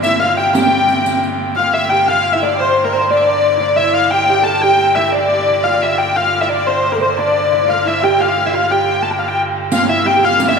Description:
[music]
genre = medieval dance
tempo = 118 BPM (dotted quarters)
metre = 6/8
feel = straight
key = unclear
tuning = A4 = 441 Hz
[part]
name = dark hurdy-gurdy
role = melody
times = 0.0-10.6 s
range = A4 to A5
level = -14 LUFS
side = left 2 dB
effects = none
[part]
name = clear fiddle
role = second line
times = 0.0-10.6 s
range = Bb4 to G5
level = -23 LUFS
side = left 2 dB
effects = none
[part]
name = pipe organ, clarinet reed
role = drone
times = 0.0-10.6 s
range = G2 to D3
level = -25 LUFS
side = right 2 dB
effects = none
[part]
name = riq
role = percussion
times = 0.0-1.3, 9.7-10.6 s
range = none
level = -21 LUFS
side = right 2 dB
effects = none
[part]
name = lute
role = second line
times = 0.1-10.6 s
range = Bb3 to Bb4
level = -20 LUFS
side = right 4 dB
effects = none
[sound]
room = wet cathedral reverb, RT60 4.4 s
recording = band playing live in one room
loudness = -12 LUFS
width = side -5 dB against mid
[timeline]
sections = 0.0-1.6 A section; 1.6-9.7 B section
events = none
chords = none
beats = 0.03 | 0.54 1.05 | 1.56 2.07 | 2.58 3.09 | 3.60 4.12 | 4.62 5.13 | 5.64 6.16 | 6.66 7.17 | 7.68 8.19 | 8.70 9.21 | 9.72 10.23

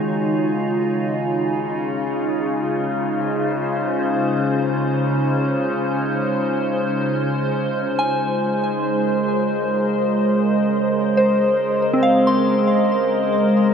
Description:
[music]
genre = ambient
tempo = free time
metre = none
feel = none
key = unclear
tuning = A4 = 440 Hz
[part]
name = glassy FM pad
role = sustained chords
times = 0.0-13.7 s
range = Db3 to Eb5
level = -19 LUFS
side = right 1 dB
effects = ensemble chorus, built-in reverb
[part]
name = overtone-sweeping drone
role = drone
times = 0.0-13.7 s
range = Db3 to Ab3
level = -24 LUFS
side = left 1 dB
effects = chorus, built-in reverb, phaser
[part]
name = soft synth bell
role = arpeggios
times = 8.0-13.7 s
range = C4 to C6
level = -22 LUFS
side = left 1 dB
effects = chorus, ping-pong delay
[sound]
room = wet huge ambient reverb, RT60 9.0 s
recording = none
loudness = -17 LUFS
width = side -7 dB against mid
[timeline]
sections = 0.0-7.8 A section; 7.8-13.7 B section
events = none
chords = 0.0 Ebm7; 1.0 Dbmaj7; 7.8 Abadd9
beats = free time

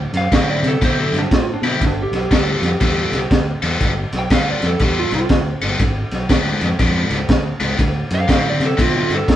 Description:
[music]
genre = electric blues shuffle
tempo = 120 BPM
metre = 4/4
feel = swing 63% on 8ths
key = unclear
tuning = A4 = 440 Hz
[part]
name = fingered electric bass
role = bass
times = 0.0-9.4 s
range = G1 to C3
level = -22 LUFS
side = equal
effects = none
[part]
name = crunchy breakbeat drum kit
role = drums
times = 0.1-9.4 s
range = kick drum, ride cymbal, snare drum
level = -18 LUFS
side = equal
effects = none
[part]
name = lightly driven lead guitar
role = melody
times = 0.2-9.4 s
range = D4 to G5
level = -22 LUFS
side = right 2 dB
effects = none
[part]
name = cranked stack guitar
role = riff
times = 0.3-9.2 s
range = G#2 to A4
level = -21 LUFS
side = left 2 dB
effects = overdrive
[sound]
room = moderate studio reverb, RT60 0.7 s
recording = band playing live in one room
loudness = -15 LUFS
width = side -12 dB against mid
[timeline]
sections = 0.0-9.4 A section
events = none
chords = 0.0 D9; 1.8 G9; 5.8 G#dim7; 7.8 D9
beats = 0.33 0.82 1.32 | 1.82 2.32 2.82 3.31 | 3.81 4.31 4.81 5.31 | 5.80 6.30 6.80 7.30 | 7.79 8.29 8.79 9.28

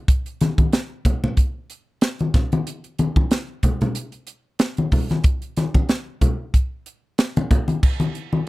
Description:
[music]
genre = jazz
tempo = 93 BPM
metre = 4/4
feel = swing 55% on 16ths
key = none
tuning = none
[part]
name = crisp fusion drum kit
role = drums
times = 0.1-8.3 s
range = crash cymbal, hi-hat, kick drum, snare drum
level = -18 LUFS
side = equal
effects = none
[part]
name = congas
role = percussion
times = 0.4-8.5 s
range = none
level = -21 LUFS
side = left 1 dB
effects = none
[sound]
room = little or no reverb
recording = dry, close 1970s-style studio recording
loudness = -19 LUFS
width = side -20 dB against mid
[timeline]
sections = 0.0-7.8 A section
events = none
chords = none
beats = | 0.08 0.73 1.38 2.02 | 2.67 3.31 3.96 4.60 | 5.25 5.89 6.54 7.19 | 7.83

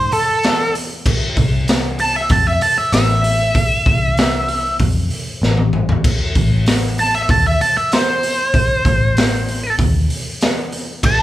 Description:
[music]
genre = blues rock power trio and southern rock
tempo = 96 BPM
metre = 4/4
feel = straight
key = A minor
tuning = A4 = 440 Hz
[part]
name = octave-fuzz lead guitar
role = melody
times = 0.0-11.2 s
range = A4 to A5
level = -16 LUFS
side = right 1 dB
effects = wah, distortion
[part]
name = vintage muted picked electric bass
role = bass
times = 0.0-11.1 s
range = A1 to F2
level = -19 LUFS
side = left 1 dB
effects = none
[part]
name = raw garage drum kit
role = drums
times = 0.1-11.2 s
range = crash cymbal, hi-hat, kick drum, snare drum, toms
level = -17 LUFS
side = equal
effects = none
[sound]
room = light reverb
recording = band playing live in one room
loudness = -14 LUFS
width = side -14 dB against mid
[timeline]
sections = 0.0-11.2 A section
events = lead electric guitar solo 0.0-11.2; drum fill 5.4-6.0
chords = 0.0 N.C.; 1.1 C6; 2.9 A5; 3.5 Cadd11; 5.4 N.C.; 6.0 Am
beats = 0.42 | 1.05 1.68 2.30 2.92 | 3.55 4.17 4.79 5.42 | 6.04 6.66 7.29 7.91 | 8.53 9.15 9.78 10.40 | 11.02

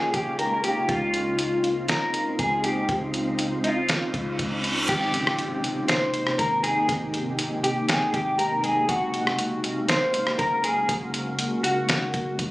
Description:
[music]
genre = hip hop, atmospheric cloud-rap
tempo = 120 BPM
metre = 4/4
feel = half-time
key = Ab major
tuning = A4 = 439 Hz
[part]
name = electric guitar at the edge of break-up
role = melody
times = 0.0-12.3 s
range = F4 to C5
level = -25 LUFS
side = equal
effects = analog chorus, low-pass filter, tape echo
[part]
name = shimmering ambient pad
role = sustained chords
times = 0.0-12.5 s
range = C3 to F5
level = -29 LUFS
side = equal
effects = chorus, built-in reverb
[part]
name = soft 808-style bass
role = bass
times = 0.0-12.5 s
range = Eb1 to Db2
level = -36 LUFS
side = equal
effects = none
[part]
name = wind-like tuned noise texture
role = texture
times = 0.0-4.8 s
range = Db4 to F5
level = -39 LUFS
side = equal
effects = built-in reverb
[part]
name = lo-fi sampler-style drum kit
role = drums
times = 0.1-12.5 s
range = crash cymbal, hi-hat, kick drum, rim click, snare drum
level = -26 LUFS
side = equal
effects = none
[part]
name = reverse cymbal and impact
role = sound effects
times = 4.1-6.9 s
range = none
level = -31 LUFS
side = right 1 dB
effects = none
[sound]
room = light reverb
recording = recorded on a phone in the room, studio reverb, compression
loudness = -22 LUFS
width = side -19 dB against mid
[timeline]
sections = 0.0-4.9 A section; 4.9-12.5 B section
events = reverse cymbal 4.1-4.9; impact 4.9-6.9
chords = 0.0 Eb9sus4; 0.9 Dbmaj9; 4.9 Abmaj9; 8.9 Gbmaj9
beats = 0.39 | 0.89 1.39 1.89 2.39 | 2.89 3.39 3.89 4.39 | 4.89 5.39 5.89 6.39 | 6.89 7.39 7.89 8.39 | 8.89 9.39 9.89 10.39 | 10.89 11.39 11.89 12.39

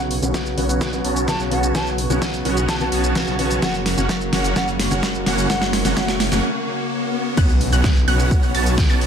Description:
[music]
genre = EDM, festival progressive house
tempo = 128 BPM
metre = 4/4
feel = straight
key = unclear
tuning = A4 = 440 Hz
[part]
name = dark baby grand piano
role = accompaniment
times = 0.0-6.4 s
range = C#3 to F#4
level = -25 LUFS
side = left 1 dB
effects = sidechain pumping, tape echo
[part]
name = lush unison pad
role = sustained chords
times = 0.0-9.1 s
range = C#3 to C#5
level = -28 LUFS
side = equal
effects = chorus, sidechain pumping
[part]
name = detuned saw bass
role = bass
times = 0.0-9.1 s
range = F#1 to B1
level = -23 LUFS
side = equal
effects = sidechain pumping
[part]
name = riser and impact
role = sound effects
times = 2.9-9.1 s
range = none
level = -26 LUFS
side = equal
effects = none
[part]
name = pop drum kit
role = drums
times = 0.1-9.1 s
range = crash cymbal, hi-hat, shaker, snare drum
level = -24 LUFS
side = equal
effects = overdrive
[part]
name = supersaw chords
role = riff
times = 0.2-9.1 s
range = A#3 to A5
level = -25 LUFS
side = right 2 dB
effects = lush chorus, sidechain pumping, low-pass filter, tape echo
[part]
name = electronic kick drum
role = drums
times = 0.3-8.9 s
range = none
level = -19 LUFS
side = equal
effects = overdrive, high-pass filter on kick
[part]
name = mellow hollow silver concert flute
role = melody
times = 1.3-6.1 s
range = F#5 to A5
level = -30 LUFS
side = equal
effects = tape echo
[part]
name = wide unison pluck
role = arpeggios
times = 7.4-9.1 s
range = F#6 to A6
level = -26 LUFS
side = moving between left 4 dB and right 8 dB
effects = auto-pan, sidechain pumping, tape echo
[sound]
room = light reverb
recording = none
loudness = -17 LUFS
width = side -8 dB against mid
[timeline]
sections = 0.0-7.4 A section; 7.4-9.1 B section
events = build-up 0.0-7.4; drum fill 0.0-6.4; filter sweep on supersaw synth 0.0-7.4; riser 2.9-7.4; break 6.4-7.4; drop 7.4-9.1; impact 7.4-9.1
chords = 0.0 Bsus2; 3.6 F#; 7.4 Bsus2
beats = 0.34 0.81 1.28 | 1.75 2.22 2.69 3.16 | 3.62 4.09 4.56 5.03 | 5.50 5.97 6.44 6.91 | 7.37 7.84 8.31 8.78

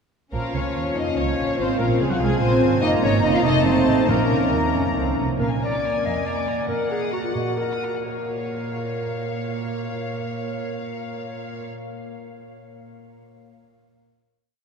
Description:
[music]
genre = quick classical-period movement for symphony orchestra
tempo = 82-98 BPM (dotted quarters)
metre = 6/8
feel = rubato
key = Bb minor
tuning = A4 = 440 Hz
[part]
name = rich studio violin section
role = melody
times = 0.3-11.6 s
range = F5 to Bb5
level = -33 LUFS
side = left 5 dB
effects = none
[part]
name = mellow clarinet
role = second line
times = 0.3-11.6 s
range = Db4 to Eb5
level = -29 LUFS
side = left 2 dB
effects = none
[part]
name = silver concert flute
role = second line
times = 0.3-4.7 s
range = Gb4 to F5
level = -32 LUFS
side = left 1 dB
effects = none
[part]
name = warm studio violin section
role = second line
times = 0.3-11.6 s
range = Gb4 to Eb6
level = -29 LUFS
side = left 3 dB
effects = none
[part]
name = mellow bassoon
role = accompaniment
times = 0.3-5.2 s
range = F3 to Bb3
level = -31 LUFS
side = right 1 dB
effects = none
[part]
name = warm studio viola section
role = accompaniment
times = 0.3-11.6 s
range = Bb3 to F4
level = -29 LUFS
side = right 2 dB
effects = none
[part]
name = warm French horn section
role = sustained chords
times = 0.3-5.2 s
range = A3 to F4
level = -29 LUFS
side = left 4 dB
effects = none
[part]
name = warm studio cello section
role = bass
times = 0.3-11.6 s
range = F2 to F4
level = -28 LUFS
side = right 3 dB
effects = none
[part]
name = warm studio double bass section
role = bass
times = 0.3-5.4 s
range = F1 to F2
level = -26 LUFS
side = right 4 dB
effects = none
[part]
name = timpani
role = percussion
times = 4.1-4.7 s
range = Bb2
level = -31 LUFS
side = left 2 dB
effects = none
[sound]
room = wet cathedral reverb, RT60 6.4 s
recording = dark, warm production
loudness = -20 LUFS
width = side -6 dB against mid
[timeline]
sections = 0.3-5.4 A section; 5.4-8.1 coda; 8.1-10.9 final chord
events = slowing down 4.7-8.1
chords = 0.3 Bbm; 1.6 Fm/Ab; 2.8 Ebm/Gb; 3.4 F7; 4.1 Bbm; 5.4 Bb7; 6.7 Ebm/Bb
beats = | 0.34 0.97 | 1.60 2.22 | 2.83 3.45 | 4.09 4.74 | 5.40 6.04 | 6.69 7.35 | 8.06 8.77 | 9.47 10.18

